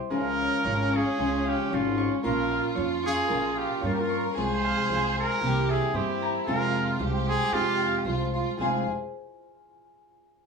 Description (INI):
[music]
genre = mexican folk, mariachi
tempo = 113 BPM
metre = 2/4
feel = swing 53% on 8ths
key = F harmonic minor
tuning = A4 = 440 Hz
[part]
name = nylon-string guitar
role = accompaniment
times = 0.0-8.8 s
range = F2 to G4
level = -30 LUFS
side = right 1 dB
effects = none
[part]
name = concert harp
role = arpeggios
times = 0.0-8.9 s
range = F4 to Db6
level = -34 LUFS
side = left 1 dB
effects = none
[part]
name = clear trumpet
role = melody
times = 0.1-8.1 s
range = F4 to C5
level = -28 LUFS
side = right 1 dB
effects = none
[part]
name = warm studio violin section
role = second line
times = 0.1-8.9 s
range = Db4 to Bb4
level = -31 LUFS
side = left 1 dB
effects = none
[part]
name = upright bass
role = bass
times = 0.1-8.9 s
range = F1 to G2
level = -32 LUFS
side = right 1 dB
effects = none
[sound]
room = wet studio ambience, RT60 0.5 s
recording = band playing live in one room, small room ambience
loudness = -24 LUFS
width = side -5 dB against mid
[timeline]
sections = 0.0-8.6 A section; 8.6-9.6 B section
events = none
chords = 0.1 Db; 2.2 Bbm; 4.3 Fm/C; 5.4 C7; 6.5 Fm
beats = | 0.10 0.64 | 1.18 1.71 | 2.23 2.76 | 3.28 3.81 | 4.35 4.88 | 5.41 5.94 | 6.46 6.99 | 7.52 8.05 | 8.59